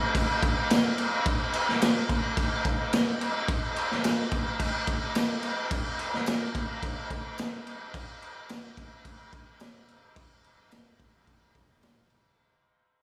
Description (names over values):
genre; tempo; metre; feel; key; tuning
rock; 108 BPM; 4/4; straight; none; none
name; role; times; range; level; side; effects
raw garage drum kit; drums; 0.1-12.2 s; crash cymbal, kick drum, snare drum; -29 LUFS; equal; none
tambourine; percussion; 0.7-12.0 s; none; -48 LUFS; equal; none
room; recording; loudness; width
moderate plate reverb, RT60 1.6 s, small room ambience; studio reverb; -28 LUFS; mono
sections
0.0-12.4 A section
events
fade-out 0.0-12.4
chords
none